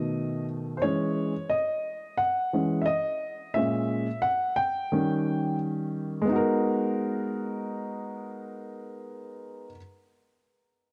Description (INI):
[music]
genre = hip hop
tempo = 88 BPM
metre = 4/4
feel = swing 65% on 16ths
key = G# minor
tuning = A4 = 440 Hz
[part]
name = warm upright piano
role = solo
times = 0.0-9.8 s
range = A#2 to G5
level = -29 LUFS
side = equal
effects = none
[sound]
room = moderate plate reverb, RT60 2.7 s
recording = dark, warm production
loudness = -28 LUFS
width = mono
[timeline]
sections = 0.0-6.3 A section; 6.3-9.0 B section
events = upright piano solo 0.0-6.3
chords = 0.0 B7; 0.8 E6; 3.6 A#m7b5; 4.9 D#7; 6.3 G#m9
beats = 0.15 | 0.83 1.51 2.19 2.88 | 3.56 4.24 4.92 5.60 | 6.29 6.97 7.65 8.33